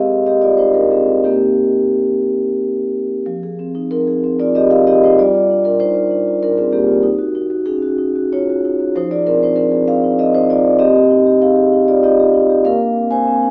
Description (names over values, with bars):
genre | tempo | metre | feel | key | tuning
classical, contemporary piece for solo vibraphone | 86-99 BPM | 3/4 | rubato | F dorian | A4 = 439 Hz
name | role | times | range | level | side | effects
vibraphone with soft mallets | solo | 0.0-13.5 s | F3 to Ab5 | -12 LUFS | equal | none
room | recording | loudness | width
wet recital hall reverb, RT60 1.3 s | heard from further back in the room, small speaker sound | -12 LUFS | side -37 dB against mid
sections
0.0-3.3 A section; 3.3-13.5 B section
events
none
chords
0.0 Abadd9; 1.2 Cm7; 3.3 Fm9; 5.2 Gm7; 7.0 Ebm11; 9.0 Fm7; 10.8 Cm; 12.6 Bbadd9